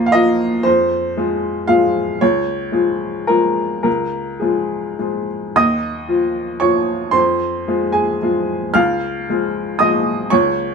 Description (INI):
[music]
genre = neoclassical minimalist piano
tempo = 103-118 BPM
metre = 3/4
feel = rubato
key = unclear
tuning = A4 = 440 Hz
[part]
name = clear upright piano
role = solo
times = 0.0-10.7 s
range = Db2 to F6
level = -15 LUFS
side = equal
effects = none
[sound]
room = moderate stone room reverb, RT60 1.1 s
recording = band playing live in one room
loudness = -15 LUFS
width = side -5 dB against mid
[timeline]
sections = 0.0-5.6 A section; 5.6-10.7 A section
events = none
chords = 0.0 Ebsus2; 0.7 Fm; 2.2 Db; 5.6 Ebsus2; 7.2 Fm; 8.8 Db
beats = 0.14 | 0.66 1.18 1.69 | 2.21 2.74 3.29 | 3.86 4.43 5.00 | 5.57 6.10 6.62 | 7.15 7.68 8.21 | 8.76 9.29 9.80 | 10.31